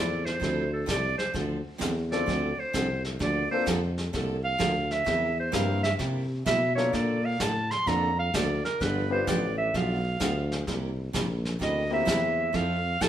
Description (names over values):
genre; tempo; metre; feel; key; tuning
country, western swing; 129 BPM; 4/4; swing 66% on 8ths; unclear; A4 = 440 Hz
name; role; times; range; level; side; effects
breathy clarinet; second line; 0.0-13.1 s; A4 to C6; -28 LUFS; right 2 dB; none
clear upright piano; accompaniment; 0.0-12.5 s; A3 to B4; -33 LUFS; left 5 dB; none
picked steel-string acoustic guitar; accompaniment; 0.0-13.1 s; C3 to A4; -34 LUFS; right 3 dB; none
mellow tuba; bass; 0.0-13.1 s; G1 to C3; -30 LUFS; left 1 dB; none
vintage brush drum kit; drums; 0.3-13.1 s; brushed snare drum, hi-hat, kick drum, snare drum; -33 LUFS; left 1 dB; none
room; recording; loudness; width
moderate large studio reverb, RT60 1.0 s; band playing live in one room; -25 LUFS; side -10 dB against mid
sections
0.0-13.1 A section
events
clarinet solo 0.0-13.1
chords
0.0 Fmaj7; 3.2 Bbmaj9/D; 5.1 C7; 6.9 Bbmaj7; 8.8 G7; 10.7 C7; 12.5 Fmaj7